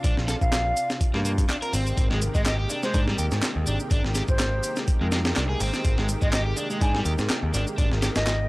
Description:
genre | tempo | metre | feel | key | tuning
breakbeat, breaks | 124 BPM | 4/4 | swing 55% on 16ths | unclear | A4 = 440 Hz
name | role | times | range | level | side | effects
lush unison pad | sustained chords | 0.0-8.5 s | C3 to G4 | -33 LUFS | equal | chorus, sidechain pumping
overdriven semi-hollow guitar | riff | 0.0-8.1 s | G3 to Bb4 | -31 LUFS | equal | analog delay
modern bright picked electric bass | bass | 0.0-8.5 s | Ab1 to Ab2 | -26 LUFS | equal | tube saturation
breakbeat sampler-style drum kit | drums | 0.0-8.4 s | hi-hat, kick drum, snare drum | -25 LUFS | equal | none
electronic shaker and handclaps | drums | 0.0-8.4 s | none | -34 LUFS | equal | none
bright reedy baroque flute | melody | 0.4-8.5 s | C5 to Ab5 | -30 LUFS | equal | small speaker sound, analog delay
room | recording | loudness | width
little or no reverb | dry, gritty hardware recording | -22 LUFS | side -22 dB against mid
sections
0.0-8.5 A section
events
none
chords
0.0 Bbadd9; 1.7 Abmaj9

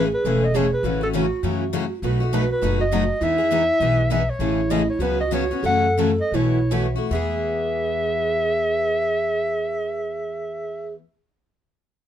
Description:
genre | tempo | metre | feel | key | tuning
acoustic string swing (jazz manouche) | 141-202 BPM | 4/4 | swing 60% on 8ths | E major | A4 = 437 Hz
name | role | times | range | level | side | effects
mellow clarinet | melody | 0.0-10.9 s | F#4 to F#5 | -24 LUFS | left 1 dB | none
mellow hollow wooden-headed alto flute | second line | 0.0-10.9 s | E4 to A4 | -25 LUFS | right 4 dB | none
picked old ladder-braced acoustic guitar | accompaniment | 0.0-11.0 s | B2 to B4 | -31 LUFS | right 8 dB | none
picked steel-string acoustic guitar | accompaniment | 0.0-11.0 s | B2 to G#4 | -27 LUFS | left 8 dB | none
upright bass | bass | 0.0-10.9 s | E1 to F#2 | -26 LUFS | equal | none
room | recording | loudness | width
light reverb | minimal, uncompressed stereo recording | -19 LUFS | side -10 dB against mid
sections
0.0-4.4 A section; 4.4-7.1 B section; 7.1-10.5 C section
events
slowing down 4.4-7.1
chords
0.0 Amaj7; 0.8 F#m7/A; 2.0 B7; 3.2 Emaj7; 4.4 Amaj7; 5.0 C#7sus4; 5.6 F#m7; 6.3 B9sus4; 7.1 E

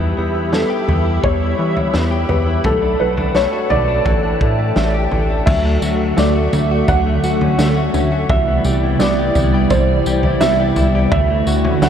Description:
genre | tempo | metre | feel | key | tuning
dream pop | 85 BPM | 4/4 | straight | D major | A4 = 441 Hz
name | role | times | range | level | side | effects
hollow soft pad | sustained chords | 0.0-11.9 s | C3 to E6 | -20 LUFS | right 1 dB | ensemble chorus
direct-recorded clean electric guitar | arpeggios | 0.0-11.9 s | E3 to G4 | -22 LUFS | left 4 dB | analog chorus, diffuse ambient delay
chorused synth bass | bass | 0.0-11.9 s | A1 to E3 | -19 LUFS | equal | none
vibraphone with hard mallets | texture | 0.2-11.9 s | E4 to A4 | -31 LUFS | right 2 dB | none
felt-muted upright piano | melody | 0.5-11.9 s | A4 to F#5 | -20 LUFS | right 1 dB | lush chorus, diffuse ambient delay
loose indie drum kit | drums | 0.5-11.9 s | crash cymbal, kick drum, snare drum, tambourine, toms | -21 LUFS | equal | none
room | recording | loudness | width
wet huge ambient reverb, RT60 8.6 s | dreamy mix soaked in reverb | -13 LUFS | side -8 dB against mid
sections
0.0-5.5 A section; 5.5-11.9 B section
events
none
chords
0.0 Em; 2.6 Bm7; 4.1 A7sus4; 5.5 Dmaj7; 8.3 Cmaj7; 11.1 Dmaj7

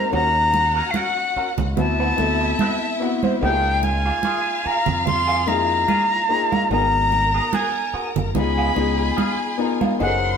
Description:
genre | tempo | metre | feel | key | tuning
lush 1970s-style soul | 73 BPM | 4/4 | swing 54% on 16ths | unclear | A4 = 436 Hz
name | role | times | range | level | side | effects
bright reedy jazz flute | melody | 0.0-10.4 s | F5 to C6 | -21 LUFS | left 1 dB | none
dark symphonic string section | second line | 0.0-10.4 s | E4 to C6 | -28 LUFS | left 2 dB | none
clear grand piano | accompaniment | 0.0-10.4 s | Bb3 to Bb4 | -26 LUFS | left 6 dB | none
electric guitar through a small old amp | riff | 0.0-10.2 s | Bb3 to C5 | -28 LUFS | right 5 dB | wah
modern bright fingered electric bass | bass | 0.1-10.4 s | Gb1 to F2 | -24 LUFS | equal | none
congas | percussion | 0.1-10.2 s | none | -25 LUFS | right 5 dB | none
room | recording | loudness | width
moderate large studio reverb, RT60 0.9 s | band playing live in one room | -18 LUFS | side -7 dB against mid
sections
0.0-10.4 A section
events
none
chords
0.1 Ebm7; 1.8 D13; 3.4 Db6; 6.7 Abm7; 8.4 Db7

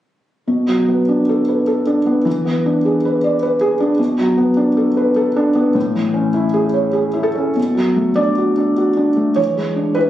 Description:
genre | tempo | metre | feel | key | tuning
neoclassical minimalist piano | 102 BPM | 3/4 | rubato | B dorian | A4 = 440 Hz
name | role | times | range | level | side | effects
felt-muted upright piano | solo | 0.5-10.1 s | A2 to D5 | -14 LUFS | equal | none
room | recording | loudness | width
moderate stone room reverb, RT60 1.2 s | recorded on a phone in the room, club reverb | -14 LUFS | side -12 dB against mid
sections
0.5-7.6 A section; 7.6-10.1 B section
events
none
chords
0.5 Bm7; 2.3 E7; 4.0 Bm7; 5.8 Amaj7; 7.6 Bm7; 9.4 E7

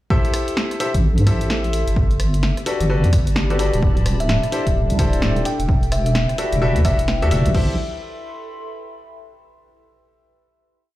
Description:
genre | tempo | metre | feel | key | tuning
UK garage, two-step garage | 129 BPM | 4/4 | swing 62% on 16ths | A dorian | A4 = 440 Hz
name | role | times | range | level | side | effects
clear concert grand piano | stabs | 0.1-7.7 s | E4 to E5 | -24 LUFS | left 2 dB | ping-pong delay
electronic kick drum | drums | 0.1-7.7 s | none | -19 LUFS | equal | none
warbly tape-like pad | texture | 1.0-9.4 s | D4 to C6 | -30 LUFS | left 1 dB | chorus, built-in reverb, phaser, sidechain pumping
punchy analog drum machine | drums | 0.2-7.7 s | crash cymbal, hi-hat, rim click, snare drum | -26 LUFS | equal | none
deep soft wobble bass | bass | 0.9-7.8 s | D1 to A2 | -19 LUFS | equal | chorus
kalimba | melody | 4.2-7.5 s | E5 to G5 | -27 LUFS | left 1 dB | ping-pong delay
room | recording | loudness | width
little or no reverb | played on a big sound system in a bare room, large studio reverb | -16 LUFS | side -16 dB against mid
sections
0.1-7.5 drop; 7.5-9.4 final chord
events
drop 0.1-7.5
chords
0.1 Am7; 2.0 Gmaj9; 3.8 D9sus4; 5.5 Em11; 7.5 Am

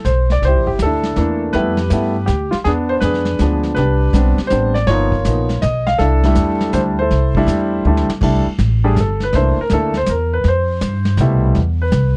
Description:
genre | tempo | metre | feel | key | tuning
jazz piano trio | 162 BPM | 3/4 | swing 66% on 8ths | C major | A4 = 440 Hz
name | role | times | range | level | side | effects
warm grand piano | melody | 0.0-12.2 s | B2 to F5 | -20 LUFS | equal | none
upright bass | bass | 0.0-12.2 s | G1 to G2 | -19 LUFS | equal | none
vintage brush drum kit | drums | 0.1-12.2 s | brushed snare drum, crash cymbal, hi-hat, kick drum, snare drum | -26 LUFS | equal | none
room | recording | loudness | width
little or no reverb | none | -16 LUFS | mono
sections
0.0-8.2 A section; 8.2-12.2 B section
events
drum fill 7.9-8.2; grand piano solo 8.2-12.2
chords
0.4 C13; 1.5 Fmaj9#11; 2.7 E7b9; 3.8 Am11; 4.9 G7alt; 6.0 C69; 8.2 Csus2; 9.3 C13; 10.4 Fmaj9#11; 11.6 E5

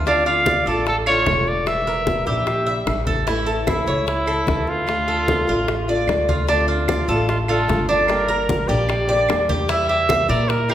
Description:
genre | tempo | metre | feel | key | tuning
latin, Cuban son and guajira | 150 BPM | 4/4 | straight | D harmonic minor | A4 = 440 Hz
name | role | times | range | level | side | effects
picked old ladder-braced acoustic guitar | accompaniment | 0.0-10.7 s | D3 to G4 | -26 LUFS | left 2 dB | none
Cuban tres | arpeggios | 0.0-10.7 s | D4 to E5 | -22 LUFS | right 1 dB | none
upright bass | bass | 0.0-10.7 s | E1 to Bb2 | -25 LUFS | equal | none
warm trumpet | melody | 0.1-10.7 s | E4 to F5 | -21 LUFS | right 1 dB | none
bongos | percussion | 0.1-10.7 s | none | -28 LUFS | left 4 dB | none
congas | percussion | 0.1-10.7 s | none | -28 LUFS | left 1 dB | none
claves | percussion | 0.5-10.7 s | none | -36 LUFS | right 6 dB | none
room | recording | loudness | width
wet recital hall reverb, RT60 1.6 s | recorded in a church or concert hall | -17 LUFS | side -11 dB against mid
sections
0.0-6.5 A section; 6.5-10.7 A section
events
none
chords
0.1 Dm; 1.7 Edim; 3.3 A; 4.9 Dm; 8.1 Gm; 9.7 Edim

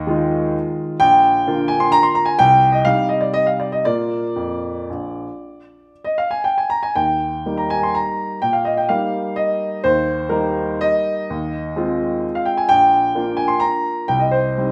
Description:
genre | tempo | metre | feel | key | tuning
classical, piano waltz | 110-137 BPM | 3/4 | rubato | Eb major | A4 = 440 Hz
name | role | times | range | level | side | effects
warm baby grand piano | solo | 0.0-14.7 s | Bb1 to C6 | -18 LUFS | equal | none
room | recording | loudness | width
wet recital hall reverb, RT60 1.3 s | none | -18 LUFS | mono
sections
0.0-14.7 A section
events
none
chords
0.0 Fm7/Eb; 1.0 Bb; 2.4 Cm; 3.8 Bb; 7.0 Eb; 11.3 Fm7/Eb; 12.7 Bb; 14.1 Cm

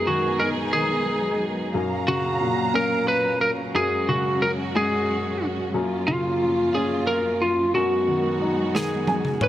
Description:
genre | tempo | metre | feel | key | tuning
six-eight pop ballad | 60 BPM (dotted quarters) | 6/8 | straight | unclear | A4 = 440 Hz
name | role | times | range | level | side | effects
lightly driven lead guitar | melody | 0.0-9.5 s | E#4 to B4 | -23 LUFS | equal | none
warm baby grand piano | accompaniment | 0.0-9.5 s | F#2 to G#5 | -27 LUFS | left 2 dB | none
dark studio string section | sustained chords | 0.0-9.5 s | F#2 to A#5 | -28 LUFS | right 2 dB | none
modern studio drum kit | drums | 8.8-9.5 s | snare drum, toms | -26 LUFS | equal | none
room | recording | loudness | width
light reverb, small room reverb | none | -20 LUFS | side -12 dB against mid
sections
0.0-9.5 A section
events
grand piano fill 8.7-9.5; drum fill 8.7-9.5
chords
0.0 B6/F#; 1.7 F#maj7; 3.7 C#sus4/F#; 5.7 A#m/F#; 7.7 B6/F#

